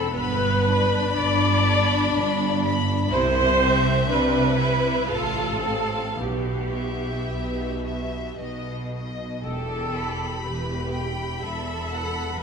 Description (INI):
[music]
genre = classical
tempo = 54-63 BPM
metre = 3/4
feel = rubato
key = E minor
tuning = A4 = 440 Hz
[part]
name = rich chamber violin section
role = melody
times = 0.0-12.4 s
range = D#5 to B5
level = -32 LUFS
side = left 4 dB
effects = none
[part]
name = clear studio violin section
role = second line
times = 0.0-12.4 s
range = B3 to G5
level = -30 LUFS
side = left 5 dB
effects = none
[part]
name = clear chamber viola section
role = accompaniment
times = 0.0-12.4 s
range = G4 to D5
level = -25 LUFS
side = right 1 dB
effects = none
[part]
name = clear chamber double bass section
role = bass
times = 0.0-12.4 s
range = E1 to C2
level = -29 LUFS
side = right 2 dB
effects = none
[part]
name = rich chamber cello section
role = bass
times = 0.0-12.4 s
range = E2 to C3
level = -28 LUFS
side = right 2 dB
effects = none
[part]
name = timpani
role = percussion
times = 6.2-7.8 s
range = B2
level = -41 LUFS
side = left 1 dB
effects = none
[sound]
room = wet scoring stage reverb, RT60 2.2 s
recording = minimal, uncompressed stereo recording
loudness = -21 LUFS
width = side -6 dB against mid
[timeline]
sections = 0.0-12.4 A section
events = none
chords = 0.1 G; 3.1 C; 5.1 F/A; 6.2 Em/B; 8.4 B; 9.4 Em